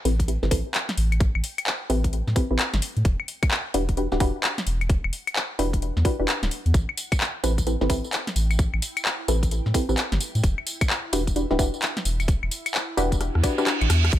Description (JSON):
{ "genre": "UK garage, two-step garage", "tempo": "130 BPM", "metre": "4/4", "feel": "swing 63% on 16ths", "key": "A dorian", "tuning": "A4 = 440 Hz", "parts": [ { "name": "soft dub sub bass", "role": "bass", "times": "0.0-14.2 s", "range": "D1 to A2", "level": "-24 LUFS", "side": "equal", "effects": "sidechain pumping" }, { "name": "ethereal airy pad", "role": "texture", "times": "0.4-14.2 s", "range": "E4 to G5", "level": "-43 LUFS", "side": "right 4 dB", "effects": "ensemble chorus, built-in reverb, phaser, sidechain pumping" }, { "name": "punchy chord stab", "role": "stabs", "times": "0.1-14.1 s", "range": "C4 to B4", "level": "-27 LUFS", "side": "equal", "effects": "chorus, cassette tape, ping-pong delay" }, { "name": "garage drum kit", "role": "drums", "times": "0.1-14.2 s", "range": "claves, handclaps, hi-hat, rim click, snare drum, tambourine", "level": "-27 LUFS", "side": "left 1 dB", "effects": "small room ambience" }, { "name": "electronic kick drum", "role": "drums", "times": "0.2-14.2 s", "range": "none", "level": "-23 LUFS", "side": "equal", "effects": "small room ambience" }, { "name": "reverse cymbal", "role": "sound effects", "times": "13.4-14.1 s", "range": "none", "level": "-27 LUFS", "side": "right 7 dB", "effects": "none" } ], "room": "digital ambience", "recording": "none", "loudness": "-21 LUFS", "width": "side -13 dB against mid", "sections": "0.0-14.2 A section", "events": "fade-in on ambient pad 0.0-14.2; filter sweep on synth stab 0.0-14.2; drum fill 13.2-14.1; reverse cymbal 13.4-14.1", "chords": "0.0 Am9; 3.0 Em9; 6.7 Am9; 10.4 Em9", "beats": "0.28 0.74 | 1.20 1.67 2.13 2.59 | 3.05 3.51 3.97 4.43 | 4.90 5.36 5.82 6.28 | 6.74 7.20 7.67 8.13 | 8.59 9.05 9.51 9.97 | 10.44 10.90 11.36 11.82 | 12.28 12.74 13.20 13.67 | 14.13" }